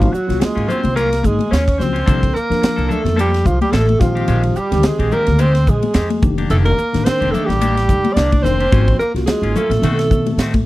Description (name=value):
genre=electric jazz fusion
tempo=108 BPM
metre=4/4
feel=swing 56% on 16ths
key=unclear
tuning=A4 = 440 Hz
part: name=breathy alto saxophone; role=melody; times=0.0-10.7 s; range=F4 to D5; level=-20 LUFS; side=equal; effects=none
part: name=breathy tenor saxophone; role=second line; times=0.0-10.7 s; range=F3 to D4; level=-24 LUFS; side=right 4 dB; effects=none
part: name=tine electric piano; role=accompaniment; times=0.0-10.5 s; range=Eb3 to Bb4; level=-22 LUFS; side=left 2 dB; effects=medium stereo tremolo, phaser
part: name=clean electric guitar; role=stabs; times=0.0-10.6 s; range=Eb3 to A4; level=-28 LUFS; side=left 4 dB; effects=wide subtle chorus
part: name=upright bass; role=bass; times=0.0-10.6 s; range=F1 to B2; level=-18 LUFS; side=equal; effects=none
part: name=crisp fusion drum kit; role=drums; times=0.0-10.7 s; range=hi-hat, kick drum, ride cymbal, snare drum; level=-19 LUFS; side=equal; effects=none
part: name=congas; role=percussion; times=0.4-10.7 s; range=none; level=-23 LUFS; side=left 5 dB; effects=none
room=little or no reverb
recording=dry, close 1970s-style studio recording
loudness=-13 LUFS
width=side -17 dB against mid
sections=0.0-10.7 A section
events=none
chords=0.0 Ab13sus4; 2.1 C13sus4; 4.0 Bb13sus4; 6.2 F13sus4; 8.7 Ab13sus4; 9.8 B7b9